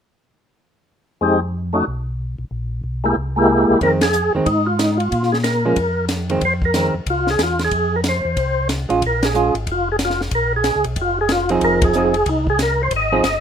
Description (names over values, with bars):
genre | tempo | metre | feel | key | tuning
soul jazz organ trio | 184 BPM | 4/4 | swing 63% on 8ths | F minor | A4 = 444 Hz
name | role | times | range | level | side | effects
percussive tonewheel organ | melody | 1.2-13.4 s | Ab3 to Eb5 | -18 LUFS | equal | slow rotary speaker, overdrive, chorus vibrato
mellow tonewheel organ | bass | 1.2-13.4 s | F1 to Bb2 | -23 LUFS | equal | chorus vibrato, slow rotary speaker
hollow-body jazz guitar | accompaniment | 3.8-13.2 s | Eb3 to Ab4 | -19 LUFS | right 3 dB | none
compact cocktail drum kit | drums | 3.8-13.3 s | hi-hat, kick drum, ride cymbal, snare drum | -24 LUFS | equal | none
room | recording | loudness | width
light reverb | minimal, uncompressed stereo recording | -16 LUFS | side -8 dB against mid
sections
1.2-3.8 A section; 3.8-13.4 B section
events
band accent 4.0, 9.2, 11.8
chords
1.2 Fm7; 1.9 N.C.; 2.5 Abmadd9/Bb; 3.2 C7b13; 3.8 Fm7; 5.1 Bb7(no3); 6.4 Fm; 9.0 Bbm7; 11.6 Fm7